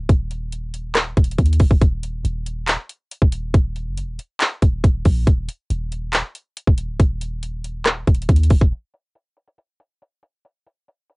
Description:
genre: hip hop, trap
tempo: 139 BPM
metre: 4/4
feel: half-time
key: Eb minor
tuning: A4 = 441 Hz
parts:
  - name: clean 808-style bass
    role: bass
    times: 0.0-8.7 s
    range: Db1 to Eb2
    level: -22 LUFS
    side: equal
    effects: none
  - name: trap drum kit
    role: drums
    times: 0.1-11.2 s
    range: handclaps, hi-hat, kick drum, rim click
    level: -15 LUFS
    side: equal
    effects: cassette tape
room: little or no reverb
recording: home recording on cassette, low-pass filter, nothing above 10.8 kHz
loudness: -17 LUFS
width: side -31 dB against mid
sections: 0.0-8.7 A section; 8.7-11.2 B section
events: filter sweep 8.7-11.2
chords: none

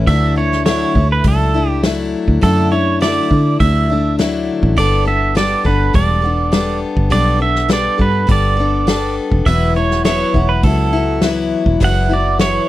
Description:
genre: folk rock and heartland rock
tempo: 102 BPM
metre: 4/4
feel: straight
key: unclear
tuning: A4 = 440 Hz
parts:
  - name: picked steel-string acoustic guitar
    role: accompaniment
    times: 0.0-12.7 s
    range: E2 to A4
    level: -18 LUFS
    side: left 4 dB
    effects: none
  - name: fingered electric bass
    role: bass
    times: 0.0-12.6 s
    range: E1 to D3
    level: -16 LUFS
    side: equal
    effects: none
  - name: pedal steel guitar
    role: melody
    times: 0.1-12.7 s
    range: A4 to F#5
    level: -18 LUFS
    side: right 4 dB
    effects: none
  - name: natural country drum kit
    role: drums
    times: 0.1-12.5 s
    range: hi-hat, kick drum, snare drum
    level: -17 LUFS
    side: equal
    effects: none
room: little or no reverb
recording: dry, close 1970s-style studio recording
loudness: -12 LUFS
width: side -15 dB against mid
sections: 0.0-12.7 A section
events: none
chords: 0.1 Dadd9; 4.8 Gadd9; 9.5 Esus2

